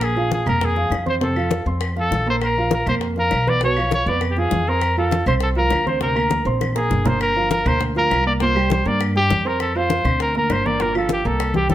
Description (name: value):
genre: Afro-Cuban jazz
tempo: 200 BPM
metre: 4/4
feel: straight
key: F major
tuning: A4 = 440 Hz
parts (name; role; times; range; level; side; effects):
- clear trumpet; melody; 0.0-11.7 s; G4 to D5; -21 LUFS; equal; slapback echo
- dark concert grand piano; accompaniment; 0.0-11.7 s; Bb2 to C6; -23 LUFS; right 3 dB; none
- upright bass; bass; 0.0-11.7 s; G1 to G2; -23 LUFS; equal; none
- bongos; percussion; 0.0-11.7 s; none; -29 LUFS; left 8 dB; none
- claves; percussion; 0.0-11.6 s; none; -34 LUFS; left 3 dB; none
- congas; percussion; 0.0-11.7 s; none; -26 LUFS; left 2 dB; none
room: light reverb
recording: none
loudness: -17 LUFS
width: side -12 dB against mid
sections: 0.0-11.7 A section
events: drum fill 6.6-7.2, 11.6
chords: 0.0 Bbsus2; 2.4 Bb5; 3.6 Fdim; 4.8 F6; 6.0 Gmadd11; 7.2 Gm7; 8.4 C5; 9.6 F5; 10.2 Gmadd11; 10.8 Gm7